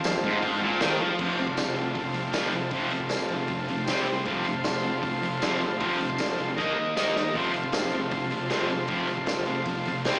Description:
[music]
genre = garage rock duo or trio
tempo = 156 BPM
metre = 4/4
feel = straight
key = F major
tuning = A4 = 441 Hz
[part]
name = combo organ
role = sustained chords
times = 0.0-10.2 s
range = C4 to Eb5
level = -29 LUFS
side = equal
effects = none
[part]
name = thick fuzz guitar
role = riff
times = 0.0-10.2 s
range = F2 to Eb4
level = -28 LUFS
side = equal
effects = distortion, slapback echo
[part]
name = raw garage drum kit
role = drums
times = 0.0-10.1 s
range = crash cymbal, hi-hat, kick drum, snare drum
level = -30 LUFS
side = equal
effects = none
[part]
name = tambourine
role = percussion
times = 0.0-10.1 s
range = none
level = -38 LUFS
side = equal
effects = none
[sound]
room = moderate plate reverb, RT60 2.1 s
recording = live gig heard through the venue's PA, club reverb, small speaker sound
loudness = -24 LUFS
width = side -26 dB against mid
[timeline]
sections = 0.0-1.2 A section; 1.2-10.2 B section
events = drum fill 6.6-7.3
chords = 0.0 F; 3.9 C5; 4.3 F; 6.6 Eb5; 7.3 F

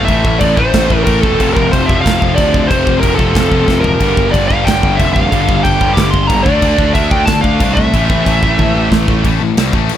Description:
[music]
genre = heavy metal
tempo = 184 BPM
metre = 4/4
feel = straight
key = A minor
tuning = A4 = 440 Hz
[part]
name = high-gain lead guitar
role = melody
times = 0.0-8.9 s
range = A4 to D6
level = -15 LUFS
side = equal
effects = distortion
[part]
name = heavy high-gain guitar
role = riff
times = 0.0-9.9 s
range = F2 to D4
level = -20 LUFS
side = left 13 dB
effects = distortion
[part]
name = high-gain distorted guitar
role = riff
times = 0.0-9.2 s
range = F2 to D4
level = -20 LUFS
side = right 12 dB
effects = distortion
[part]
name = high-gain distorted guitar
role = riff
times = 0.0-9.9 s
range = F2 to D4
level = -22 LUFS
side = left 1 dB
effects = distortion
[part]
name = fuzz picked electric bass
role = bass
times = 0.0-9.9 s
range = E1 to D2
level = -16 LUFS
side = equal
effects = overdrive
[part]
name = modern studio drum kit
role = drums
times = 0.1-10.0 s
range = crash cymbal, kick drum, snare drum, toms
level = -15 LUFS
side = equal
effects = none
[sound]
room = little or no reverb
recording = none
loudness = -10 LUFS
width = side -10 dB against mid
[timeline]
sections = 0.0-9.2 A section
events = half time 0.0-9.2; drum fill 3.7-4.0, 8.6-9.2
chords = 0.0 Am; 1.4 F; 4.0 G5; 6.5 Dm; 7.9 A5; 9.2 Am

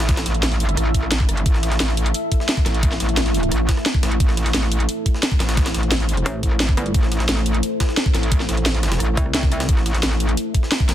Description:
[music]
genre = dark technical drum and bass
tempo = 175 BPM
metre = 4/4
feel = straight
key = A minor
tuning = A4 = 442 Hz
[part]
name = deep dark ambient pad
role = sustained chords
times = 0.0-10.9 s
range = A3 to E5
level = -26 LUFS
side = left 1 dB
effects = chorus, built-in reverb, sidechain pumping
[part]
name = metallic wobble bass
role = bass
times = 0.0-10.9 s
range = G1 to A1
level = -20 LUFS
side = equal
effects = distortion, chorus, tube saturation, sidechain pumping
[part]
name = breakbeat sampler-style drum kit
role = drums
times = 0.0-10.9 s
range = hi-hat, snare drum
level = -30 LUFS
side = left 1 dB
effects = high-pass filter on hats, high-pass filter on snare
[part]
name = drum and bass drum kit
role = drums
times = 0.0-10.9 s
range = hi-hat, rim click, snare drum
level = -24 LUFS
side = equal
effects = none
[part]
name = electronic kick drum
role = drums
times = 0.1-10.9 s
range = none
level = -18 LUFS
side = equal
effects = none
[part]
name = metallic wobble bass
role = bass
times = 6.3-6.9, 9.2-9.7 s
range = G1 to C2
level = -23 LUFS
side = equal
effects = chorus
[sound]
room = little or no reverb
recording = dense, heavily limited modern master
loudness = -17 LUFS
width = side -12 dB against mid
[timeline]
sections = 0.0-10.9 A section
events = none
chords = 0.0 Am

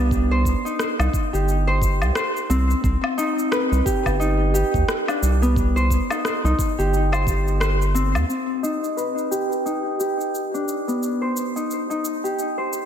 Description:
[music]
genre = organic downtempo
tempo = 88 BPM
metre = 4/4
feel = swing 59% on 16ths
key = C harmonic minor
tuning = A4 = 440 Hz
[part]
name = Celtic harp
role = arpeggios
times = 0.0-12.9 s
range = B3 to C5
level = -22 LUFS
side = left 1 dB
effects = low-pass filter, ping-pong delay
[part]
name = round analog bass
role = bass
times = 0.0-8.2 s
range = G1 to Eb2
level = -20 LUFS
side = equal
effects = none
[part]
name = electronic kick drum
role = drums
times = 0.1-7.4 s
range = none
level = -24 LUFS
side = equal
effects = none
[part]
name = electronic shaker, rim click and woodblock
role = drums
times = 0.1-12.9 s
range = none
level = -28 LUFS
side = left 1 dB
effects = none
[sound]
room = moderate lush hall reverb, RT60 2.3 s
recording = dreamy mix soaked in reverb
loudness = -19 LUFS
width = side -9 dB against mid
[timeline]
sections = 0.0-8.3 A section; 8.3-12.9 B section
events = filter sweep on harp 8.3-12.9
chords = 0.0 Cmadd9

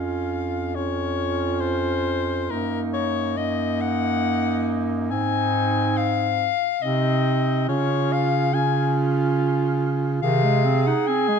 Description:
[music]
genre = classical, lyrical piece for single-reed quartet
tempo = 70 BPM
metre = 3/4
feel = rubato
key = Db major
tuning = A4 = 442 Hz
[part]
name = mellow soprano saxophone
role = melody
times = 0.0-11.4 s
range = Bb4 to Ab5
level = -25 LUFS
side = left 10 dB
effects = none
[part]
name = mellow alto saxophone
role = second line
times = 0.0-11.4 s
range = Eb4 to Ab4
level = -27 LUFS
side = right 11 dB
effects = none
[part]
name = mellow clarinet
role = accompaniment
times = 0.0-11.4 s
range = Eb3 to Eb4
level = -27 LUFS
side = left 3 dB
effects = none
[part]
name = warm bass clarinet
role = bass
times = 0.0-10.9 s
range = F2 to Db3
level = -25 LUFS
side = right 2 dB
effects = none
[sound]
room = moderate recital hall reverb, RT60 1.2 s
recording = close, detailed microphones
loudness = -20 LUFS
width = side -6 dB against mid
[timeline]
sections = 0.0-11.4 A section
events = none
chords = 0.0 Db/F; 2.5 Ebm/Gb; 5.1 Ab; 7.7 Db; 10.2 Ab/C

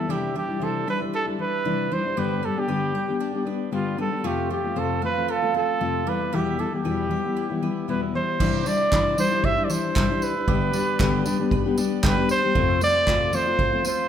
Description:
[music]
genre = acoustic pop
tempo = 116 BPM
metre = 4/4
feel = swing 55% on 16ths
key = C major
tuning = A4 = 442 Hz
[part]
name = warm trumpet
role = melody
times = 0.0-14.1 s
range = F4 to E5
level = -25 LUFS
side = right 2 dB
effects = none
[part]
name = fingerpicked steel-string acoustic guitar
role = accompaniment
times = 0.0-14.1 s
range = E2 to G4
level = -25 LUFS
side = left 4 dB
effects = none
[part]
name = mandolin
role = arpeggios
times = 0.0-14.1 s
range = G3 to G5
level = -33 LUFS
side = right 9 dB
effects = none
[part]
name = natural country drum kit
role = drums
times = 8.4-14.0 s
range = crash cymbal, handclaps, kick drum, tambourine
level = -25 LUFS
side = right 2 dB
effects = none
[sound]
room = moderate recital hall reverb, RT60 1.5 s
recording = recorded in a church or concert hall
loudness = -21 LUFS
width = side -9 dB against mid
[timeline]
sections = 0.0-8.4 A section; 8.4-14.1 B section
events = none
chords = 0.1 Cadd9; 2.2 G; 4.2 F; 6.1 Em; 8.4 Cadd9; 10.5 G; 12.6 F

